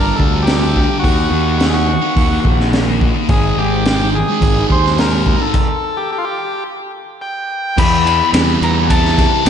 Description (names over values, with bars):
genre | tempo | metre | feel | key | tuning
psychedelic rock | 107 BPM | 4/4 | straight | unclear | A4 = 439 Hz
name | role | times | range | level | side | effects
combo organ | melody | 0.0-9.5 s | F4 to B5 | -18 LUFS | left 2 dB | spring reverb, ping-pong delay
thick fuzz guitar | riff | 0.0-9.5 s | E2 to G4 | -18 LUFS | equal | distortion, phaser
fuzz picked electric bass | bass | 0.0-9.5 s | G1 to E2 | -17 LUFS | equal | overdrive
crunchy breakbeat drum kit | drums | 0.2-9.5 s | crash cymbal, hi-hat, kick drum, ride cymbal, snare drum | -16 LUFS | equal | none
room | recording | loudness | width
moderate lush hall reverb, RT60 2.6 s | dreamy mix soaked in reverb, nothing above 10.9 kHz | -12 LUFS | side -8 dB against mid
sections
0.0-7.8 A section; 7.8-9.5 B section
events
stop 5.5-7.8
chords
0.0 G5; 1.0 Ebm; 3.3 Ab5; 5.5 N.C.; 7.8 Em